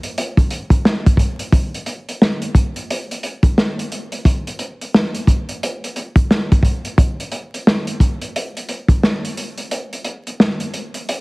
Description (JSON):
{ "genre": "hip hop", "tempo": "88 BPM", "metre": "4/4", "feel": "swing 62% on 16ths", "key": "none", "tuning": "none", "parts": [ { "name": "vintage drum kit", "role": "drums", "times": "0.0-11.2 s", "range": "hi-hat, kick drum, snare drum", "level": "-15 LUFS", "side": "equal", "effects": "none" } ], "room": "light reverb", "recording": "heavily compressed radio sound, vinyl crackle", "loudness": "-15 LUFS", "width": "side -27 dB against mid", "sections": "0.0-11.2 A section", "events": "kick muted 9.7-11.2", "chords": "none" }